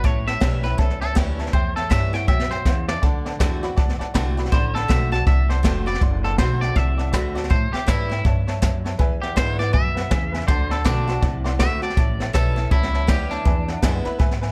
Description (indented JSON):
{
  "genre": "rockabilly",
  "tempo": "161 BPM",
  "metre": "4/4",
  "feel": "swing 61% on 8ths",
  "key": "unclear",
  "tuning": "A4 = 439 Hz",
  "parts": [
    { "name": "twangy electric guitar", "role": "melody", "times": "0.0-14.0 s", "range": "D4 to A5", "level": "-29 LUFS", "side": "equal", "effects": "tape echo" },
    { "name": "picked steel-string acoustic guitar", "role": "accompaniment", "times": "0.0-14.5 s", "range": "E2 to F#4", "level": "-33 LUFS", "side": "equal", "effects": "none" },
    { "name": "warm upright piano", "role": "accompaniment", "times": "0.0-14.5 s", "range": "B4 to C6", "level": "-35 LUFS", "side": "equal", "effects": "none" },
    { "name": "upright bass", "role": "bass", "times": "0.0-14.5 s", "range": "F1 to A2", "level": "-27 LUFS", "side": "equal", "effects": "none" },
    { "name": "jazz brush drum kit", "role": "drums", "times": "0.0-14.5 s", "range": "hi-hat, kick drum, snare drum", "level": "-23 LUFS", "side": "equal", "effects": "none" }
  ],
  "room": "little or no reverb",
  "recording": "none",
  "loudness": "-21 LUFS",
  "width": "mono",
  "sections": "0.0-14.5 A section",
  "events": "clean electric guitar solo 0.0-14.5; drum fill 2.7-3.0",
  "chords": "0.0 A7; 3.0 D7; 7.5 A7; 9.0 E7; 10.5 D7; 12.0 A7; 13.5 E7"
}